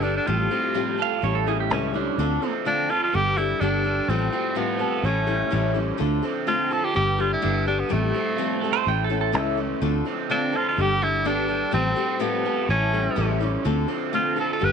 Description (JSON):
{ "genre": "folk rock and heartland rock", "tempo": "126 BPM", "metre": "4/4", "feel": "straight", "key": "D dorian", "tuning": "A4 = 437 Hz", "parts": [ { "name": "clear tenor saxophone", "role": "melody", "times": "0.0-14.7 s", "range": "A3 to B4", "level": "-25 LUFS", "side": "right 1 dB", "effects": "none" }, { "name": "picked old ladder-braced acoustic guitar", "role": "accompaniment", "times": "0.0-14.7 s", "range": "A2 to A4", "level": "-27 LUFS", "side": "left 12 dB", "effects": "none" }, { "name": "crunchy overdriven guitar", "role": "riff", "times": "0.0-14.7 s", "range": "A2 to A4", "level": "-28 LUFS", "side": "right 12 dB", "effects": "phaser" }, { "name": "fingered electric bass", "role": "bass", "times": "0.0-14.7 s", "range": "G1 to D2", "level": "-25 LUFS", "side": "equal", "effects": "none" }, { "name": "pedal steel guitar", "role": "second line", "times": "1.0-2.5, 8.7-9.6 s", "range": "C#4 to G5", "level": "-27 LUFS", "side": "right 13 dB", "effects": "none" } ], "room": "light reverb, small room ambience", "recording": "1960s-style stereo with parts hard left and right, nothing above 10.7 kHz", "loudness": "-21 LUFS", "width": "side -6 dB against mid", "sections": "0.0-9.8 A section; 9.8-14.7 A section", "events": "none", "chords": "0.3 Fadd9/A; 1.2 A7; 2.2 Dm7; 3.1 Gadd9; 4.1 Fadd9/A; 5.0 A7; 6.0 Dm7; 7.0 Gadd9; 7.9 Fadd9/A; 8.9 A; 9.8 Dm7; 10.8 Gadd9; 11.7 Fadd9/A; 12.7 A7; 13.7 Dm7" }